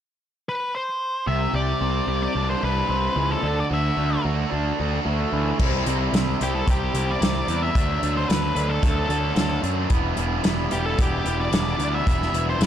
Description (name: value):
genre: indie rock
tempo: 111 BPM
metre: 4/4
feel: straight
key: unclear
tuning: A4 = 440 Hz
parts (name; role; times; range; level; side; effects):
- octave-fuzz lead guitar; melody; 0.5-12.7 s; G4 to E5; -27 LUFS; left 1 dB; distortion
- overdriven electric guitar; riff; 1.3-12.7 s; C3 to G4; -26 LUFS; right 1 dB; none
- fuzz picked electric bass; bass; 1.3-12.7 s; E1 to F#2; -25 LUFS; equal; overdrive
- loose indie drum kit; drums; 5.6-12.7 s; crash cymbal, hi-hat, kick drum, snare drum; -24 LUFS; equal; none
room: light reverb, small room ambience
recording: dark, warm production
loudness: -20 LUFS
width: side -10 dB against mid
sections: 0.0-1.3 A section; 1.3-5.6 B section; 5.6-12.7 C section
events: none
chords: 0.0 N.C.; 1.3 Cadd9; 3.4 Dadd9; 5.6 Cadd9; 7.7 D; 9.9 Em